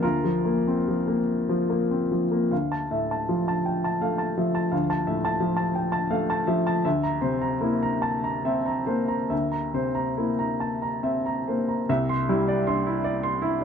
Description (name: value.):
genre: neoclassical minimalist piano.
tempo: 45-58 BPM (dotted quarters).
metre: 6/8.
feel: rubato.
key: D minor.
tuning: A4 = 440 Hz.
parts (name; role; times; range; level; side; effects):
clear upright piano; solo; 0.0-13.6 s; C2 to C6; -23 LUFS; equal; none.
room: light reverb.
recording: dark, warm production.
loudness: -23 LUFS.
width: side -7 dB against mid.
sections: 0.0-2.5 A section; 2.5-11.9 B section; 11.9-13.6 C section.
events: none.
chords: 0.0 Bbsus2/D; 2.5 Dmadd9; 6.8 C7/D; 11.9 Cadd9.